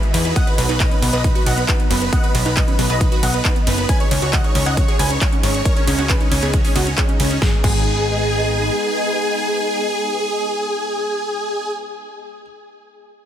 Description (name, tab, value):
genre	uplifting trance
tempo	136 BPM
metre	4/4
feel	straight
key	G# minor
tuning	A4 = 440 Hz
part	analog string pad	sustained chords	0.0-11.7 s	E3 to G#4	-27 LUFS	equal	ensemble chorus, sidechain pumping
part	wide unison pluck	arpeggios	0.0-7.8 s	E3 to C#5	-26 LUFS	right 4 dB	sidechain pumping, digital delay
part	big-room dance drum kit	drums	0.0-7.8 s	crash cymbal, handclaps, hi-hat, ride cymbal, snare drum	-24 LUFS	equal	sidechain pumping on hats, sidechain pumping on cymbals
part	big supersaw lead	melody	0.1-11.7 s	B3 to G#5	-22 LUFS	equal	sidechain pumping, digital delay
part	warm grand piano	second line	0.1-12.4 s	C#4 to G#5	-30 LUFS	equal	sidechain pumping, digital delay
part	plucky analog bass	bass	0.1-8.7 s	F#1 to E2	-21 LUFS	equal	sidechain pumping
part	electronic kick drum	drums	0.4-7.8 s	none	-18 LUFS	equal	none
room	light reverb, digital ambience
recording	dense, heavily limited modern master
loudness	-15 LUFS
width	side -10 dB against mid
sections	0.0-7.4 A section; 7.4-10.9 B section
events	drop 0.0-7.4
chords	0.4 B; 3.9 C#sus2; 7.4 G#m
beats	| 0.36 0.80 1.24 1.69 | 2.13 2.57 3.01 3.45 | 3.89 4.33 4.77 5.21 | 5.66 6.10 6.54 6.98 | 7.42 7.86 8.30 8.74 | 9.19 9.63 10.07 10.51